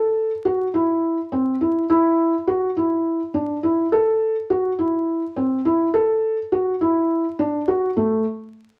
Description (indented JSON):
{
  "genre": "progressive instrumental, progressive",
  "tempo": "208 BPM (eighths)",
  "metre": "7/8",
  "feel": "straight",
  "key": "A dorian",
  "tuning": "A4 = 440 Hz",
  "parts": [
    { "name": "felt-muted upright piano", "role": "solo", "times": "0.0-8.2 s", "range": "A3 to A4", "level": "-21 LUFS", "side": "equal", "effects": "none" }
  ],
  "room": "moderate studio reverb, RT60 0.7 s",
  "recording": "vinyl crackle",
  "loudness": "-21 LUFS",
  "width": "mono",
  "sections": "0.0-8.0 A section",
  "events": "none",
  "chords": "none"
}